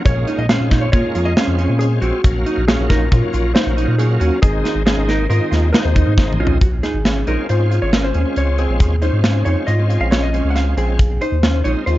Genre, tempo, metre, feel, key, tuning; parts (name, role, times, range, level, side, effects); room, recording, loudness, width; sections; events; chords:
progressive instrumental, band music in an uneven meter; 137 BPM; 5/4; straight; A4 = 440 Hz
bright tonewheel organ; accompaniment; 0.0-12.0 s; Eb3 to F5; -24 LUFS; equal; chorus vibrato, slow rotary speaker
vintage hollow-body jazz guitar; melody; 0.1-12.0 s; F4 to Gb5; -24 LUFS; left 1 dB; analog delay
smooth synth bass; bass; 0.1-12.0 s; Ab1 to Bb2; -18 LUFS; equal
tight metal drum kit; drums; 0.1-12.0 s; hi-hat, kick drum, snare drum, toms; -18 LUFS; equal
tube shaker; percussion; 0.1-11.2 s; -45 LUFS; left 5 dB
electric guitar through a small old amp; arpeggios; 0.3-12.0 s; C4 to F4; -23 LUFS; right 2 dB; analog delay
small room ambience; cassette tape, nothing above 7.6 kHz; -14 LUFS; side -16 dB against mid
0.0-6.6 A section; 6.6-12.0 B section
drum fill 6.2-6.6
0.1 Bbm7; 2.2 Ebm7/Bb; 4.4 Ab